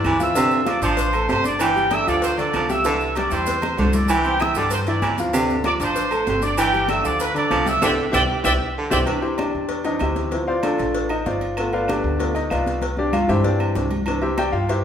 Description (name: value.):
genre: latin, salsa.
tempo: 193 BPM.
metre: 4/4.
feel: straight.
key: C major.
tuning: A4 = 439 Hz.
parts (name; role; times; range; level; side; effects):
clear trumpet section; melody; 0.0-9.0 s; G4 to E6; -22 LUFS; right 1 dB; none.
clear concert grand piano; accompaniment; 0.0-14.8 s; D3 to E6; -23 LUFS; left 1 dB; none.
agogo bells and timbales; percussion; 0.0-14.8 s; none; -32 LUFS; right 3 dB; none.
claves; percussion; 0.0-14.5 s; none; -37 LUFS; right 1 dB; none.
congas; percussion; 0.0-14.8 s; none; -30 LUFS; left 1 dB; none.
maracas; percussion; 0.0-9.0 s; none; -37 LUFS; right 4 dB; none.
warm baritone saxophone; second line; 0.1-8.9 s; C3 to G3; -24 LUFS; right 2 dB; none.
upright bass; bass; 0.1-14.8 s; G1 to G2; -27 LUFS; equal; none.
cowbell; percussion; 0.1-14.8 s; none; -32 LUFS; left 2 dB; none.
room: wet large studio reverb, RT60 1.4 s.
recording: band playing live in one room.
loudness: -18 LUFS.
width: side -8 dB against mid.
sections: 0.0-9.1 A section; 9.1-14.8 B section.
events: drum fill 3.5-4.1, 8.5-9.1, 12.8-14.1; band accent 7.8-9.1; grand piano solo 9.1-14.8.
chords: 0.4 Dm7; 1.6 G5; 2.9 Cadd9; 5.3 Dm7; 6.6 G7; 7.8 Cadd9; 10.3 Dm7; 11.6 G7; 12.8 Cadd9.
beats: 0.05 | 0.36 0.68 0.99 1.30 | 1.61 1.92 2.23 2.54 | 2.85 3.16 3.47 3.79 | 4.10 4.41 4.72 5.03 | 5.34 5.65 5.96 6.28 | 6.59 6.90 7.21 7.52 | 7.83 8.14 8.46 8.77 | 9.08 9.39 9.70 10.01 | 10.32 10.64 10.95 11.26 | 11.57 11.88 12.20 12.51 | 12.82 13.13 13.45 13.76 | 14.07 14.38 14.69.